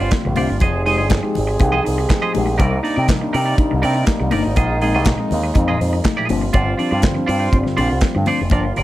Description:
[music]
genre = disco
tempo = 121 BPM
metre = 4/4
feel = straight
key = unclear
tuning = A4 = 439 Hz
[part]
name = clean electric guitar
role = accompaniment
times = 0.0-8.8 s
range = Eb4 to Eb5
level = -23 LUFS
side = right 3 dB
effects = lush chorus
[part]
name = warm French horn section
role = sustained chords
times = 0.0-8.8 s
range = C3 to Ab4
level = -24 LUFS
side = right 1 dB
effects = plate reverb
[part]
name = picked electric bass with an envelope filter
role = bass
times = 0.0-8.8 s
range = F1 to C3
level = -20 LUFS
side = equal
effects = none
[part]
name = tine electric piano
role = accompaniment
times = 0.1-8.8 s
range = G2 to G4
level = -23 LUFS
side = left 2 dB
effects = medium stereo tremolo
[part]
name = modern studio drum kit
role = drums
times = 0.1-8.8 s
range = handclaps, hi-hat, kick drum, snare drum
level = -20 LUFS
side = equal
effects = none
[part]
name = congas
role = percussion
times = 0.1-8.6 s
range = none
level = -27 LUFS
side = left 6 dB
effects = none
[sound]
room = light reverb, studio reverb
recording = none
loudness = -15 LUFS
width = side -15 dB against mid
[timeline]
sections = 0.0-8.5 A section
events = none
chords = 0.0 G7sus4; 0.6 Fm7; 2.6 Cm9; 4.6 Bb7sus4; 6.3 G7sus4

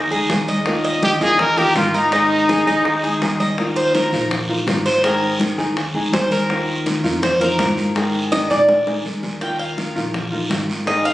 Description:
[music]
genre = latin, Cuban son and guajira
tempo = 164 BPM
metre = 4/4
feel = straight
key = unclear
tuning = A4 = 438 Hz
[part]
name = Cuban tres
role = arpeggios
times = 0.0-11.1 s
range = Eb4 to G5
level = -20 LUFS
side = right 1 dB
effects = none
[part]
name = upright bass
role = bass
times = 0.0-11.1 s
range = Ab1 to Bb2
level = -27 LUFS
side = equal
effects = none
[part]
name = flamenco guitar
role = accompaniment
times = 0.1-11.1 s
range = Eb3 to Ab4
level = -22 LUFS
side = left 1 dB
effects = none
[part]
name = congas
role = percussion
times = 0.1-11.1 s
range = none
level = -27 LUFS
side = equal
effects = none
[part]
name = bongos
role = percussion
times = 0.3-11.1 s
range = none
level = -25 LUFS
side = left 2 dB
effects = none
[part]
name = guiro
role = percussion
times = 0.3-11.1 s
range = none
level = -28 LUFS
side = right 1 dB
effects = none
[part]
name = breathy trumpet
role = melody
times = 1.0-3.4 s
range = Eb4 to Bb4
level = -18 LUFS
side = equal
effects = none
[sound]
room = moderate plate reverb, RT60 2.5 s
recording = recorded on a phone in the room, studio reverb, compression, nothing above 10.7 kHz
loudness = -16 LUFS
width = side -15 dB against mid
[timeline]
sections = 0.0-3.6 A section; 3.6-11.1 B section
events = Cuban tres solo 3.6-11.1; drum fill 8.7-9.4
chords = 0.0 Ab5; 0.7 Ebsus2; 2.1 Ab5; 3.6 Ebsus2; 5.0 Absus2; 6.5 Ebsus2; 8.0 Absus2; 9.4 Ebsus2

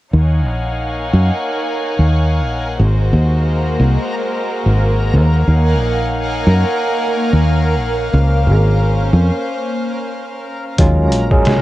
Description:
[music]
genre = trip hop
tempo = 90 BPM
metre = 4/4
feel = swing 57% on 16ths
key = Eb dorian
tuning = A4 = 440 Hz
[part]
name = clear chamber violin section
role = sustained chords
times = 0.1-10.8 s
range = Ab3 to Ab5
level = -22 LUFS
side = left 1 dB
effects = low-pass filter
[part]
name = fingered electric bass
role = bass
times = 0.1-11.6 s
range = Ab1 to Gb2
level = -13 LUFS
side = equal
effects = none
[part]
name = backwards swelling texture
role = texture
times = 0.9-11.6 s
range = F3 to F5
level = -22 LUFS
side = right 1 dB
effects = built-in reverb
[part]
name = barky tine electric piano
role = accompaniment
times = 10.8-11.6 s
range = Gb3 to Ab4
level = -15 LUFS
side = equal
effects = tremolo
[part]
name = trip hop sampler-style drum kit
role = drums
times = 10.8-11.6 s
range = hi-hat, kick drum, snare drum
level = -14 LUFS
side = equal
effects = cassette tape
[sound]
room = digital ambience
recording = home recording on cassette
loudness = -13 LUFS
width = side -16 dB against mid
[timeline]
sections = 0.1-10.8 A section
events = break 9.5-10.8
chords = 0.1 Ebm11; 2.8 Ab7; 5.5 Ebm11; 8.1 Dbmaj7; 10.8 Ebm11

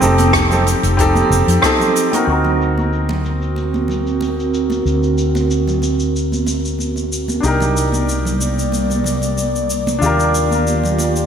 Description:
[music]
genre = sunset chillout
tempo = 93 BPM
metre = 4/4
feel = swing 53% on 16ths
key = unclear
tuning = A4 = 442 Hz
[part]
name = clear grand piano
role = accompaniment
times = 0.0-11.3 s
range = C4 to Bb4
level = -18 LUFS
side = equal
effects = auto-pan, ping-pong delay
[part]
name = airy breathy pad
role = sustained chords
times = 0.0-11.3 s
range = C3 to D5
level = -20 LUFS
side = right 1 dB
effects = chorus
[part]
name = mellow fretless electric bass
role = bass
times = 0.0-11.3 s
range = F1 to F2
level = -19 LUFS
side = equal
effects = tube saturation
[part]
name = soft brush drum kit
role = drums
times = 0.0-11.3 s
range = hi-hat, rim click, shaker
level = -23 LUFS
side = equal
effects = low-pass filter on hats, low-pass filter on snare, low-pass filter on perc, low-pass filter on room, gated reverb
[part]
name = congas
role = percussion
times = 0.2-11.1 s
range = none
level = -25 LUFS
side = right 3 dB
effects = none
[part]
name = electronic kick drum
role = drums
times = 0.3-1.8 s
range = none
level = -22 LUFS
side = equal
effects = none
[sound]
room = moderate lush hall reverb, RT60 2.0 s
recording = bright 1980s-style digital production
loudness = -14 LUFS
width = side -8 dB against mid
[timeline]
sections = 0.0-2.3 A section; 2.3-11.3 B section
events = filter sweep on analog synth pad 2.3-11.3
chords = 0.0 F9; 2.3 D7b9b13; 7.4 Cm7; 10.0 Ebmaj7

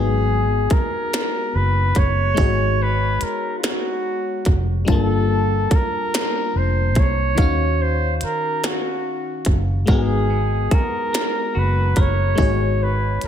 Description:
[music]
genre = slow six-eight R&B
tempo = 48 BPM (dotted quarters)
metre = 6/8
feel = straight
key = unclear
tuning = A4 = 440 Hz
[part]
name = warm flugelhorn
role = melody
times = 0.0-13.3 s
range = F4 to Db5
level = -23 LUFS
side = equal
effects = analog delay
[part]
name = clean electric guitar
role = second line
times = 0.0-0.5, 9.9-13.0 s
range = Gb3 to Bb4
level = -32 LUFS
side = right 4 dB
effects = none
[part]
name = FM electric piano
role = accompaniment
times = 0.0-13.3 s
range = Eb3 to A5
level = -26 LUFS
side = left 6 dB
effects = chorus
[part]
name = vintage muted fingered electric bass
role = bass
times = 0.0-13.3 s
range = F1 to Eb2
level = -20 LUFS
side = equal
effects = none
[part]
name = glitchy drum kit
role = drums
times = 0.7-13.3 s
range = hi-hat, kick drum, snare drum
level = -21 LUFS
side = equal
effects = none
[sound]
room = light reverb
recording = none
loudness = -17 LUFS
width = side -9 dB against mid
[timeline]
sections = 0.0-13.3 A section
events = none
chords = 0.0 Abm9; 4.9 Gm9; 7.4 Ebm9; 9.9 Abm9

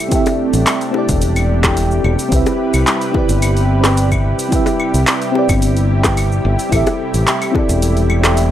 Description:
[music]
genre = sunset chillout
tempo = 109 BPM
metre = 4/4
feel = straight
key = A minor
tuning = A4 = 440 Hz
[part]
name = mellow FM electric piano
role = accompaniment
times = 0.0-8.5 s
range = C4 to G5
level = -18 LUFS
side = right 1 dB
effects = chorus, phaser, auto-pan, analog delay
[part]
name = lush unison pad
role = sustained chords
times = 0.0-8.5 s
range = C3 to B4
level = -20 LUFS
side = equal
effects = chorus
[part]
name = deep house drum kit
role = drums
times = 0.1-8.5 s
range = claves, handclaps, hi-hat, shaker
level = -20 LUFS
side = equal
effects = overdrive, studio reverb
[part]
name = electronic kick drum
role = drums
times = 0.1-7.7 s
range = none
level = -19 LUFS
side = equal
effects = overdrive, studio reverb
[part]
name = bongos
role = percussion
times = 0.3-8.3 s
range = none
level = -21 LUFS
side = left 4 dB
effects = none
[part]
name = fingered electric bass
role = bass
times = 0.5-8.5 s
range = E1 to C2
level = -15 LUFS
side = equal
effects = none
[sound]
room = digital ambience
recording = dry, gritty hardware recording, transformer saturation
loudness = -12 LUFS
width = side -11 dB against mid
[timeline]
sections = 0.0-8.5 A section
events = none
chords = 0.0 Am7; 2.3 Cmaj7; 6.7 Am7

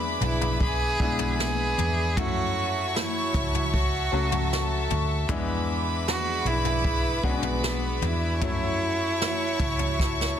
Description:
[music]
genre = pop ballad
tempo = 77 BPM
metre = 4/4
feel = straight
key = F# minor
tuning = A4 = 441 Hz
[part]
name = warm studio violin section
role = second line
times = 0.0-10.4 s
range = A4 to C#6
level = -32 LUFS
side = right 1 dB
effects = tape echo
[part]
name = clear concert grand piano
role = accompaniment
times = 0.0-10.4 s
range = E3 to F#4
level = -33 LUFS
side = left 5 dB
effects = none
[part]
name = warm chamber string section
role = sustained chords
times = 0.0-10.4 s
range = F#4 to D6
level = -34 LUFS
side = left 1 dB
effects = none
[part]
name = vintage muted fingered electric bass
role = bass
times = 0.0-10.4 s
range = B1 to F#2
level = -29 LUFS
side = equal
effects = none
[part]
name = rich cello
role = melody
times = 0.2-10.4 s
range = B3 to G#4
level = -29 LUFS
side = right 2 dB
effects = none
[part]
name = jazz brush drum kit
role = drums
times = 0.2-10.4 s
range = kick drum, snare drum, toms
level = -29 LUFS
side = equal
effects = soft clipping on snare
[sound]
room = light reverb, studio reverb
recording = dense, heavily limited modern master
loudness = -23 LUFS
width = side -9 dB against mid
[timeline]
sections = 0.0-10.4 A section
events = drum fill 10.0-10.4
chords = 0.0 E7; 2.2 F#m7; 5.3 E7; 8.4 F#m7

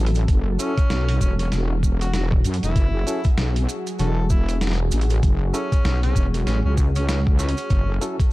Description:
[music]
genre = glitch hop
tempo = 97 BPM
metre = 4/4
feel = swing 59% on 16ths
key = F# minor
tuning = A4 = 440 Hz
[part]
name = warm analog pad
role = sustained chords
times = 0.0-8.3 s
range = F#3 to A4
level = -32 LUFS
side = left 1 dB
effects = chorus, sidechain pumping
[part]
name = wobble bass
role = bass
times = 0.0-8.0 s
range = E1 to F#2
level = -21 LUFS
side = equal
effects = chorus, tube saturation
[part]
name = boom bap sampler-style drum kit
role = drums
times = 0.1-8.3 s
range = hi-hat, rim click, snare drum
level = -31 LUFS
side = right 1 dB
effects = none
[part]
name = maracas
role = percussion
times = 0.1-8.3 s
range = none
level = -36 LUFS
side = right 6 dB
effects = none
[part]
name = electronic kick drum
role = drums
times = 0.3-8.3 s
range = none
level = -19 LUFS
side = equal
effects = none
[part]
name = overdriven harmonica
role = melody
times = 0.6-8.0 s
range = E3 to A4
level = -32 LUFS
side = equal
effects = vintage 12-bit sampler grit, ping-pong delay
[part]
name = overdriven tine electric piano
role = stabs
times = 0.6-8.2 s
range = C#4 to A4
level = -31 LUFS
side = left 1 dB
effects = medium tremolo, sidechain pumping, ping-pong delay
[sound]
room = digital ambience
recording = dark, warm production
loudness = -18 LUFS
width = side -18 dB against mid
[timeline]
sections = 0.0-8.3 A section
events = none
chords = 0.0 F#m7

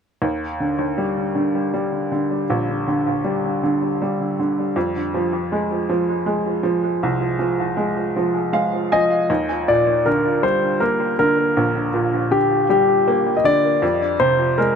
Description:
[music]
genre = six-eight pop ballad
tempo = 53 BPM (dotted quarters)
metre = 6/8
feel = straight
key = Eb major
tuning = A4 = 440 Hz
[part]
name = bright upright piano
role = accompaniment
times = 0.2-14.8 s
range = Bb1 to Ab5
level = -19 LUFS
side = right 1 dB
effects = analog delay
[part]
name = clear concert grand piano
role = melody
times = 8.9-14.8 s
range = G4 to Eb5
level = -17 LUFS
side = left 2 dB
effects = analog delay
[sound]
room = light reverb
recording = echo-heavy mix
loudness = -17 LUFS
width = side -7 dB against mid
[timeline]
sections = 0.2-9.3 A section; 9.3-14.8 B section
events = upright piano fill 8.2-9.3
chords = 0.2 Ebmaj7; 4.8 Fm; 9.3 Ebmaj7; 13.8 Fm

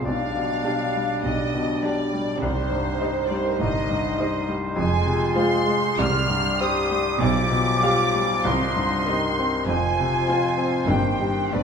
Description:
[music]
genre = classical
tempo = 100 BPM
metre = 4/4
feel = uneven beats, rubato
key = C minor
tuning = A4 = 441 Hz
[part]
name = clear grand piano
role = melody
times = 0.0-11.6 s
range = B1 to F5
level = -26 LUFS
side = left 3 dB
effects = none
[part]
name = rich symphonic violin section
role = melody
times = 0.0-11.6 s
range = Bb4 to F6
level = -30 LUFS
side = left 1 dB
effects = none
[part]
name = rich symphonic violin section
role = second line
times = 0.0-11.6 s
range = C5 to F6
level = -32 LUFS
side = right 1 dB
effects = none
[part]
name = warm clarinet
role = second line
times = 0.0-11.6 s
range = D4 to G4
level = -33 LUFS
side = equal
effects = none
[part]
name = mellow bassoon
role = accompaniment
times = 0.0-11.6 s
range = Eb3 to Ab3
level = -31 LUFS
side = right 2 dB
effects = none
[part]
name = rich symphonic cello section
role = bass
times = 0.0-11.6 s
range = F2 to C3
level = -30 LUFS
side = right 4 dB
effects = none
[part]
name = rich symphonic double bass section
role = bass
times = 0.0-11.6 s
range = F1 to C2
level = -30 LUFS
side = right 4 dB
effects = none
[part]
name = clear oboe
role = second line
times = 0.1-11.6 s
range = B4 to Eb5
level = -34 LUFS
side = right 2 dB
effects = none
[part]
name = mellow hollow small flute group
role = second line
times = 0.1-11.6 s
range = C5 to F6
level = -28 LUFS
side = right 1 dB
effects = none
[part]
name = mellow French horn section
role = sustained chords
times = 0.1-11.6 s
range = Eb3 to G4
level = -31 LUFS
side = left 2 dB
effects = none
[part]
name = rich symphonic viola section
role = accompaniment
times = 0.6-11.6 s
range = G3 to G4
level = -33 LUFS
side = right 4 dB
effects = none
[part]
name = timpani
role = percussion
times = 2.4-11.5 s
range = G2 to C3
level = -32 LUFS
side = equal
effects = none
[sound]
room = wet recital hall reverb, RT60 1.5 s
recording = minimal, uncompressed stereo recording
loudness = -20 LUFS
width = side -6 dB against mid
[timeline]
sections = 0.0-11.6 A section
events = none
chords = 0.1 G7/B; 2.4 Cm; 4.8 Fm; 6.0 Cm; 7.2 G7/B; 8.5 Cm; 9.7 Fm; 10.9 Cm/G

